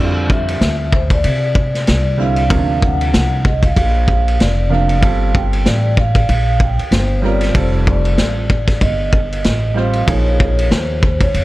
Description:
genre	hip hop, jazz-hop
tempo	95 BPM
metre	4/4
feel	swing 57% on 16ths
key	F major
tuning	A4 = 440 Hz
part	vibraphone with soft mallets	melody	0.0-11.4 s	C5 to G5	-21 LUFS	right 1 dB	tape echo
part	warm concert grand piano	accompaniment	0.0-11.0 s	C3 to C5	-21 LUFS	right 3 dB	none
part	upright bass	bass	0.0-11.4 s	E#1 to C3	-17 LUFS	equal	none
part	vintage drum kit	drums	0.3-11.4 s	hi-hat, kick drum, ride cymbal, snare drum	-16 LUFS	equal	none
room	small room ambience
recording	echo-heavy mix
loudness	-12 LUFS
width	side -17 dB against mid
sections	0.0-11.4 A section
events	none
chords	0.0 F5; 2.5 D7alt; 5.0 Gm9; 7.6 F7; 10.1 Bbm7

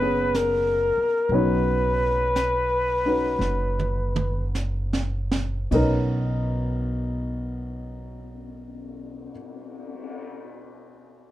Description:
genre	jazz ballad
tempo	50-62 BPM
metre	4/4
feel	swing 67% on 8ths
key	B major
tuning	A4 = 440 Hz
part	trumpet with bucket mute	melody	0.0-4.5 s	A#4 to B4	-23 LUFS	left 1 dB	plate reverb
part	warm upright piano	accompaniment	0.0-11.3 s	B2 to C#5	-28 LUFS	left 2 dB	none
part	upright bass	bass	0.0-9.3 s	F#1 to B1	-28 LUFS	right 1 dB	none
part	jazz brush drum kit	drums	0.3-10.2 s	brushed snare drum, cymbal swell, hi-hat, kick drum, ride cymbal, snare drum, toms	-33 LUFS	right 2 dB	none
room	light reverb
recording	none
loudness	-22 LUFS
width	side -14 dB against mid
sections	0.0-5.7 A section; 5.7-10.5 B section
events	slowing down 0.0-5.7; drum fill 3.4-5.7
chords	0.0 Badd9; 5.7 Bmaj9

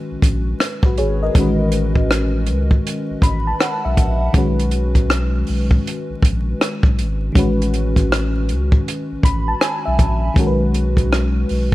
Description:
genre	R&B, neo-soul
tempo	80 BPM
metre	4/4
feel	swing 63% on 16ths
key	B major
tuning	A4 = 440 Hz
part	FM electric piano with soft pad layer	accompaniment	0.0-11.7 s	D#3 to B5	-21 LUFS	left 1 dB	chorus
part	saturated sub bass	bass	0.1-11.7 s	G#1 to C#2	-19 LUFS	equal	none
part	compact cocktail drum kit	drums	0.2-11.7 s	hi-hat, kick drum, rim click	-17 LUFS	equal	none
room	little or no reverb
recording	vinyl crackle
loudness	-15 LUFS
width	side -17 dB against mid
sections	0.0-11.7 A section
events	FM electric piano fill 2.9-4.4, 8.9-10.4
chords	0.0 Bmaj9; 1.4 Amaj9; 4.4 Badd9; 7.4 Amaj9; 10.4 Badd9

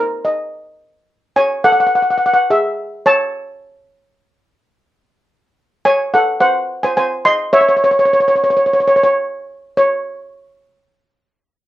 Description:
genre	calypso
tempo	107 BPM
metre	4/4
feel	straight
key	C# minor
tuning	A4 = 438 Hz
part	steel pan	solo	0.0-10.0 s	G#4 to C6	-12 LUFS	equal	none
room	light reverb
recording	close, detailed microphones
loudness	-12 LUFS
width	side -14 dB against mid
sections	0.8-9.8 A section; 9.8-11.7 B section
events	none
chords	0.0 N.C.; 0.8 C#m; 3.0 N.C.; 5.3 Amaj7; 6.4 C(b5, no3); 7.5 N.C.

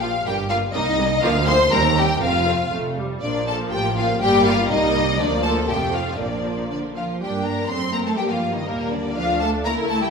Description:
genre	quick classical-period movement for string orchestra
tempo	122 BPM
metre	2/4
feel	rubato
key	Bb major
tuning	A4 = 440 Hz
part	warm studio violin section	melody	0.0-10.1 s	Bb4 to C6	-23 LUFS	left 3 dB	none
part	rich studio violin section	second line	0.0-10.1 s	Bb3 to C5	-24 LUFS	left 2 dB	none
part	rich studio viola section	accompaniment	0.0-10.1 s	F3 to E4	-25 LUFS	right 2 dB	none
part	dark studio cello section	bass	0.0-10.1 s	C2 to C4	-28 LUFS	right 2 dB	none
part	warm studio double bass section	bass	0.0-10.1 s	F1 to G2	-27 LUFS	right 4 dB	none
room	wet scoring stage reverb, RT60 1.5 s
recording	minimal, uncompressed stereo recording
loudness	-18 LUFS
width	side -5 dB against mid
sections	0.0-7.2 A section; 7.2-10.1 B section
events	none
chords	0.3 Gm; 0.7 Cm7; 1.2 Bb/D; 1.7 Cm7/Eb; 2.2 F; 3.2 Bb5; 4.2 Gm; 4.7 Cm7; 5.2 Bb/D; 5.7 F; 6.2 Bb; 7.2 Gm; 7.7 F#dim; 8.2 Gm; 9.2 Dm

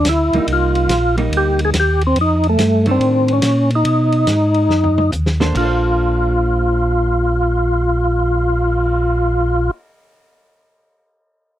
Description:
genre	soul jazz organ trio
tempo	142 BPM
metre	4/4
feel	swing 65% on 8ths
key	Bb major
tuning	A4 = 440 Hz
part	percussive tonewheel organ	melody	0.0-9.7 s	A3 to Ab4	-16 LUFS	equal	slow rotary speaker, overdrive, chorus vibrato
part	mellow tonewheel organ	bass	0.0-9.7 s	Bb1 to B2	-18 LUFS	equal	slow rotary speaker
part	warm soul drum kit	drums	0.0-8.8 s	crash cymbal, cymbal swell, hi-hat, kick drum, ride cymbal, snare drum, toms	-25 LUFS	equal	none
part	hollow-body jazz guitar	accompaniment	0.3-9.9 s	Eb3 to C5	-24 LUFS	right 2 dB	none
room	little or no reverb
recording	dry, close 1970s-style studio recording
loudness	-14 LUFS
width	side -12 dB against mid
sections	0.0-5.6 A section; 5.6-8.9 B section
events	drum fill 4.7-5.6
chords	0.5 Cm7; 2.2 F13; 3.9 B; 5.6 Bbmaj9

